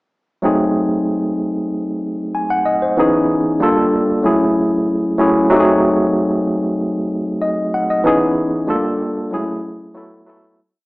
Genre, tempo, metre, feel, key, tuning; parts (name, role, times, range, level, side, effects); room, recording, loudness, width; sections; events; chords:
soul; 95 BPM; 4/4; straight; A4 = 441 Hz
barky tine electric piano; solo; 0.4-10.6 s; E3 to G#5; -14 LUFS; equal; overdrive, fast stereo tremolo
moderate stone room reverb, RT60 1.0 s; band playing live in one room, small speaker sound; -14 LUFS; side -23 dB against mid
0.4-10.6 A section
fade-out 8.0-10.6
0.4 G#7b9; 3.0 C#m9; 3.6 Gm9; 4.2 F#m9; 5.5 G#7b9; 8.0 C#m9; 8.7 Gm9; 9.3 F#m9; 10.0 B7sus4